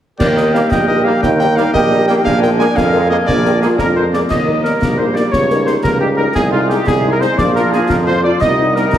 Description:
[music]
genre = military-style march for wind band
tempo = 117 BPM (dotted quarters)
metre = 6/8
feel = straight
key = Eb major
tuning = A4 = 441 Hz
[part]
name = mellow cornet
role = melody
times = 0.2-9.0 s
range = F4 to Ab5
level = -19 LUFS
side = right 1 dB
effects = none
[part]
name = warm euphonium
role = second line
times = 0.2-3.9 s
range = D4 to G4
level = -20 LUFS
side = right 1 dB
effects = none
[part]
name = warm woodwind section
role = second line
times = 0.2-9.0 s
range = F4 to Ab5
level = -19 LUFS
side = left 1 dB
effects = none
[part]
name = clear tuba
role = bass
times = 0.2-9.0 s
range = G1 to F2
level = -16 LUFS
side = right 2 dB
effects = none
[part]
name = concert snare drum, clash cymbals and concert bass drum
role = drums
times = 0.2-9.0 s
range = none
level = -21 LUFS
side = left 1 dB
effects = none
[part]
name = mellow French horn section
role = accompaniment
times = 0.4-8.8 s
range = G3 to Bb4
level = -21 LUFS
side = left 4 dB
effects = none
[part]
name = clear trombone section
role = sustained chords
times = 0.5-9.0 s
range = F3 to F4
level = -21 LUFS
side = right 2 dB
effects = none
[sound]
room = wet recital hall reverb, RT60 1.3 s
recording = heavily compressed radio sound, multiband compression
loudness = -11 LUFS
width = side -10 dB against mid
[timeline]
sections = 0.2-4.3 A section; 4.3-9.0 B section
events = none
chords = 0.2 Eb; 2.3 Bb7; 4.3 Eb; 5.3 Eb7/Db; 6.4 Ab/C; 7.4 Bb; 8.4 Cm

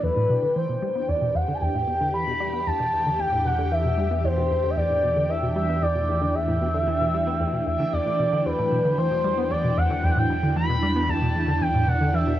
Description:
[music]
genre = ambient, sequencer-driven space music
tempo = 114 BPM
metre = 4/4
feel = straight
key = unclear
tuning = A4 = 440 Hz
[part]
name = expressive synth lead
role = melody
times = 0.0-12.4 s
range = B4 to B5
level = -24 LUFS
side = equal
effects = wide subtle chorus, cassette tape, tape echo
[part]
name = phased string machine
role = sustained chords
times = 0.0-12.4 s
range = E3 to G4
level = -29 LUFS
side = equal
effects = ensemble chorus, phaser
[part]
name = tight sequenced synth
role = riff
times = 0.0-12.3 s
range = E2 to B3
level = -27 LUFS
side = equal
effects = chorus, phaser, cassette tape, tape echo
[part]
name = round analog bass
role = bass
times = 0.0-12.4 s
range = E2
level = -29 LUFS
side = equal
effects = none
[part]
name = bubbling stepped-filter texture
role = texture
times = 0.0-12.4 s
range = G5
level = -39 LUFS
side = right 1 dB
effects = chorus, built-in reverb
[sound]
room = wet booth ambience, RT60 0.2 s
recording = home recording on cassette, nothing above 10.6 kHz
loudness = -21 LUFS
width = side -12 dB against mid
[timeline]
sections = 0.0-12.4 A section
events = none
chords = 0.0 Em

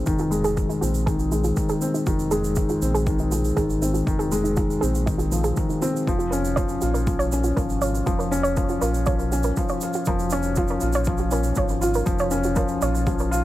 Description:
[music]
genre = piano and strings electronica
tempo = 120 BPM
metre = 4/4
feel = straight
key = unclear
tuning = A4 = 442 Hz
[part]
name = felt-muted upright piano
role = riff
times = 0.0-13.4 s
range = Eb3 to F4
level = -24 LUFS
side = left 2 dB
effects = low-pass filter, digital delay
[part]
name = round analog bass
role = bass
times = 0.0-13.4 s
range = F1 to Bb1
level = -26 LUFS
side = equal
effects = sidechain pumping
[part]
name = soft round pluck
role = arpeggios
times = 0.1-13.2 s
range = Eb4 to Db5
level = -29 LUFS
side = right 3 dB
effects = chorus, sidechain pumping, digital delay
[part]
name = electronic kick drum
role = drums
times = 0.1-13.2 s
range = none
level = -26 LUFS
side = equal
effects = overdrive
[part]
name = shaker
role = drums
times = 0.1-13.4 s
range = none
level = -36 LUFS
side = right 6 dB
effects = none
[sound]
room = light reverb, small room ambience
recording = none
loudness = -20 LUFS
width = side -15 dB against mid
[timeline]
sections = 0.0-13.4 A section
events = filter sweep on felt piano 0.0-13.4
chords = 0.0 Fm7; 6.1 Bbm/F

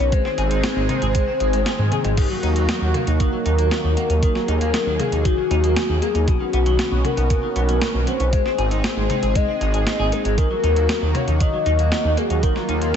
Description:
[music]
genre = synthwave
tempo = 117 BPM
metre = 4/4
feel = straight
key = Eb minor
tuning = A4 = 439 Hz
[part]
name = soft octave-layered synth lead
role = melody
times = 0.0-13.0 s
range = Gb4 to Eb5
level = -23 LUFS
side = left 2 dB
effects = chorus, phaser, digital delay
[part]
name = warm analog pad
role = sustained chords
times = 0.0-13.0 s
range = D#3 to Ab4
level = -27 LUFS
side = equal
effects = chorus, sidechain pumping
[part]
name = clean electric guitar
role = riff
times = 0.0-13.0 s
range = B2 to Ab4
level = -29 LUFS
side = left 2 dB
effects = wide subtle chorus, digital delay
[part]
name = wide detuned saw bass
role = bass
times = 0.0-12.9 s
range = Ab1 to Ab2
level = -21 LUFS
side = equal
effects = chorus
[part]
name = clean 12-bit digital drum machine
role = drums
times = 0.1-13.0 s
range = crash cymbal, hi-hat, snare drum, toms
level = -26 LUFS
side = equal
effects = overdrive, gated reverb
[part]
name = electronic kick drum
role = drums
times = 0.1-12.5 s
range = none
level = -20 LUFS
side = equal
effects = overdrive
[sound]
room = light reverb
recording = nothing above 8.0 kHz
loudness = -17 LUFS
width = side -8 dB against mid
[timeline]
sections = 0.0-13.0 A section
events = drum fill 1.8-2.2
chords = 0.1 Ab; 2.2 Ebm; 6.3 Badd9; 8.3 Ab; 10.4 Ebm

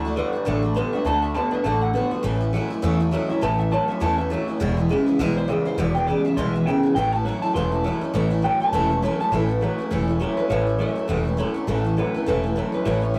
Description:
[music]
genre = rockabilly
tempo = 203 BPM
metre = 4/4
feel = swing 59% on 8ths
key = A major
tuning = A4 = 440 Hz
[part]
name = electric guitar through a small old amp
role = melody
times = 0.0-13.2 s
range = A4 to C6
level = -29 LUFS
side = equal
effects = none
[part]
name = picked steel-string acoustic guitar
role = accompaniment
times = 0.0-13.2 s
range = E2 to F#4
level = -30 LUFS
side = equal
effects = none
[part]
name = electric guitar through a small old amp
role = riff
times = 0.0-13.2 s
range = E2 to B3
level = -26 LUFS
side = equal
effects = phaser
[part]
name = upright bass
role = bass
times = 0.0-13.2 s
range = E1 to E2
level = -28 LUFS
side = equal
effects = none
[sound]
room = wet booth ambience, RT60 0.2 s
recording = rough rehearsal-room recording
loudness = -22 LUFS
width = mono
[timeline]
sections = 0.0-9.3 A section; 9.3-13.2 B section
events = clean electric guitar solo 0.0-9.3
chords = 0.0 D; 2.2 A; 4.6 E; 7.0 A

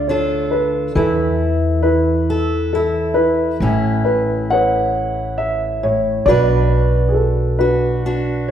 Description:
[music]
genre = acoustic folk-pop ballad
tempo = 45 BPM (dotted quarters)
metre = 6/8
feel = straight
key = A major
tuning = A4 = 436 Hz
[part]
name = dark grand piano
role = melody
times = 0.0-8.5 s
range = D4 to F#5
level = -18 LUFS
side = equal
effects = none
[part]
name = fingerpicked steel-string acoustic guitar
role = accompaniment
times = 0.0-8.5 s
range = A2 to B4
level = -20 LUFS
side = left 1 dB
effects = none
[part]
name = upright bass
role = bass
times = 0.0-8.5 s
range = A1 to E2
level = -21 LUFS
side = equal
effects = none
[sound]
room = wet scoring stage reverb, RT60 1.9 s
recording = recorded in a church or concert hall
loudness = -15 LUFS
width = side -9 dB against mid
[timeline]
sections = 0.0-8.5 A section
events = none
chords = 0.0 Dm; 1.0 Esus4; 3.6 Aadd9; 6.3 Bm

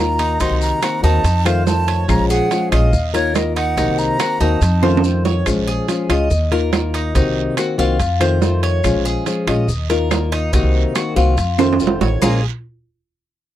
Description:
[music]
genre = latin, Cuban son and guajira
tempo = 142 BPM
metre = 4/4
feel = straight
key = Bb minor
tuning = A4 = 442 Hz
[part]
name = breathy jazz flute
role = melody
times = 0.0-5.0 s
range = Db5 to C6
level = -21 LUFS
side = right 2 dB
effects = none
[part]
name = flamenco guitar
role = accompaniment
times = 0.0-12.4 s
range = Bb2 to Bb4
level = -20 LUFS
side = left 4 dB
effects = none
[part]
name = Cuban tres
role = arpeggios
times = 0.0-12.4 s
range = Bb3 to Eb5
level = -24 LUFS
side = equal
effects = none
[part]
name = upright bass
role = bass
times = 0.0-12.4 s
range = F1 to F2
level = -18 LUFS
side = equal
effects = none
[part]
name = guiro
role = percussion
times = 0.2-12.3 s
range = none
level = -34 LUFS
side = right 21 dB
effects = none
[part]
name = maracas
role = percussion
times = 0.2-12.3 s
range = none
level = -33 LUFS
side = left 8 dB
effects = none
[part]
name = timbales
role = percussion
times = 0.2-12.3 s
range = none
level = -21 LUFS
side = right 9 dB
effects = none
[part]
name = claves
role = percussion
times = 0.8-12.3 s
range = none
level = -28 LUFS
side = left 17 dB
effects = none
[sound]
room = light reverb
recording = dry, close 1970s-style studio recording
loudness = -14 LUFS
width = side -12 dB against mid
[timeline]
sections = 0.0-5.5 A section; 5.5-12.2 B section; 12.2-13.6 C section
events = drum fill 4.8-5.5, 11.6-12.2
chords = 0.4 Cm7b5; 1.2 F7; 2.1 Bbm7; 2.9 Ebsus2; 3.8 Cm7b5; 4.6 F7; 5.5 Bbm7; 6.3 Ebsus2; 7.2 Cm7b5; 8.0 F7; 8.8 Bbm7; 9.7 Ebsus2; 10.5 Cm7b5; 11.4 F7; 12.2 Bbm7

